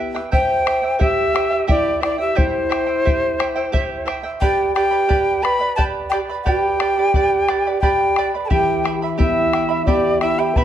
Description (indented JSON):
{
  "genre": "andean folk, Andean ensemble",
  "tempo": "88 BPM",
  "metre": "3/4",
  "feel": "straight",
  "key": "unclear",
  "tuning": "A4 = 440 Hz",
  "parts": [
    { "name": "charango", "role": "accompaniment", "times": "0.0-10.6 s", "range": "E4 to B5", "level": "-24 LUFS", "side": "right 4 dB", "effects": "none" },
    { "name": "nylon-string guitar", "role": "accompaniment", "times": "0.0-0.2, 8.5-10.6 s", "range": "B2 to G4", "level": "-24 LUFS", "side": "left 7 dB", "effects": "none" },
    { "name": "bombo", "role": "percussion", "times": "0.2-10.6 s", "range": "none", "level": "-22 LUFS", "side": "left 1 dB", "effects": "none" },
    { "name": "bright quena", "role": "melody", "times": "0.3-10.6 s", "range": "C5 to B5", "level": "-20 LUFS", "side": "left 3 dB", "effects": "none" },
    { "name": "mellow hollow polished pan flute", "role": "second line", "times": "0.3-10.6 s", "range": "E4 to D5", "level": "-22 LUFS", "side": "right 6 dB", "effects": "none" }
  ],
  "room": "moderate recital hall reverb, RT60 1.5 s",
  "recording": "dark, warm production",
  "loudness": "-16 LUFS",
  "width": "side -10 dB against mid",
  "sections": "0.3-10.6 A section",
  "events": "none",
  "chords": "0.3 C; 4.4 G; 8.5 Em"
}